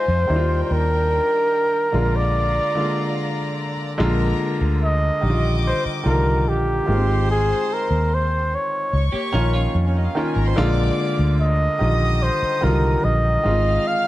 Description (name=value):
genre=soul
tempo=73 BPM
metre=4/4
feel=straight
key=Eb major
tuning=A4 = 440 Hz
part: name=warm flugelhorn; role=melody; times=0.0-14.1 s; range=G4 to F5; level=-22 LUFS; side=equal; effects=none
part: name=warm chamber violin section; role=second line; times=0.0-14.1 s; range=Db4 to F6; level=-30 LUFS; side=left 1 dB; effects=none
part: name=warm concert grand piano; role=accompaniment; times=0.0-14.1 s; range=D3 to F4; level=-24 LUFS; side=equal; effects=none
part: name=vintage muted fingered electric bass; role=bass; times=0.1-13.8 s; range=Ab1 to F2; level=-20 LUFS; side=equal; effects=none
part: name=semi-hollow electric guitar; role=riff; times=9.1-10.5 s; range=Bb3 to Db5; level=-29 LUFS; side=right 2 dB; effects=none
room=light reverb, studio ambience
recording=dark, warm production, faint mains hum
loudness=-18 LUFS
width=side -15 dB against mid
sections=0.0-4.0 A section; 4.0-14.1 B section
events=break 3.2-4.0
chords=0.3 Ebmaj9; 1.9 Bb7; 5.2 Ebmaj9/Bb; 6.9 Ab6; 8.9 Db69; 10.6 Bb7; 11.8 Ebmaj9/Bb; 13.4 Ab6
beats=| 0.70 1.52 2.35 3.17 | 3.99 4.82 5.64 6.46 | 7.28 8.10 8.92 9.74 | 10.57 11.39 12.21 13.03 | 13.85